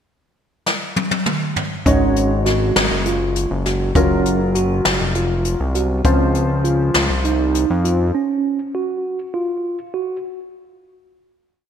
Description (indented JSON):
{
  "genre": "progressive instrumental, band music in an uneven meter",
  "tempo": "201 BPM (eighths)",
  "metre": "7/8",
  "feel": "straight",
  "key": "Gb lydian",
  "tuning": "A4 = 440 Hz",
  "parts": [
    { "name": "jazz brush drum kit", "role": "drums", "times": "0.7-8.0 s", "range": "hi-hat, kick drum, snare drum, toms", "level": "-20 LUFS", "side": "left 1 dB", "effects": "gated reverb" },
    { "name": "warm grand piano", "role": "accompaniment", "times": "1.9-8.1 s", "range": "F3 to Db5", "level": "-23 LUFS", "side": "left 4 dB", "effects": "wide subtle chorus" },
    { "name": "mellow tine electric piano", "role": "arpeggios", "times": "1.9-10.2 s", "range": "C4 to Gb4", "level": "-21 LUFS", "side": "right 4 dB", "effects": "medium stereo tremolo, digital delay" },
    { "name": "fat analog bass", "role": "bass", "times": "1.9-8.1 s", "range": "F1 to F2", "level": "-19 LUFS", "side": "equal", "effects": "none" }
  ],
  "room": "moderate lush hall reverb, RT60 1.8 s, small room ambience",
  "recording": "bright 1980s-style digital production",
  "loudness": "-16 LUFS",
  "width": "side -8 dB against mid",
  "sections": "0.0-1.9 pickup bar; 1.9-10.2 groove",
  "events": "drum fill 0.7-1.9",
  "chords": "0.0 N.C.; 1.9 Ab7sus4; 4.0 Gbmaj7; 6.0 Dbmaj7; 8.1 Gb5",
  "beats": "0.07 0.37 0.67 0.97 1.27 1.56 | 1.86 2.16 2.46 2.76 3.06 3.36 3.66 | 3.96 4.25 4.55 4.85 5.15 5.45 5.75 | 6.05 6.35 6.65 6.95 7.25 7.54 7.84 | 8.14 8.44 8.74 9.04 9.34 9.64 9.94"
}